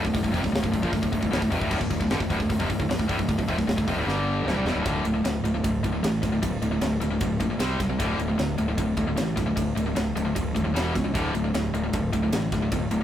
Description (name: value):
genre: heavy metal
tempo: 153 BPM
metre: 4/4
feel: straight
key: D minor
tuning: A4 = 436 Hz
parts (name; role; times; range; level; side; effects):
- high-gain distorted guitar; riff; 0.0-13.0 s; D2 to C4; -30 LUFS; right 6 dB; distortion
- tight distorted guitar; riff; 0.0-13.0 s; D2 to C4; -27 LUFS; left 4 dB; distortion
- fuzz fingered electric bass; bass; 0.0-13.0 s; D1 to C#2; -28 LUFS; equal; overdrive
- tight metal drum kit; drums; 0.0-13.0 s; crash cymbal, hi-hat, kick drum, ride cymbal, snare drum; -30 LUFS; equal; none
room: little or no reverb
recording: rough rehearsal-room recording, warm saturation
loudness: -23 LUFS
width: side -11 dB against mid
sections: 0.0-4.9 A section; 4.9-13.0 B section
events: drum fill 4.1-4.9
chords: 0.0 Dm; 4.1 G5; 4.5 D5; 7.6 C5; 8.0 D5; 10.8 E5; 11.1 D5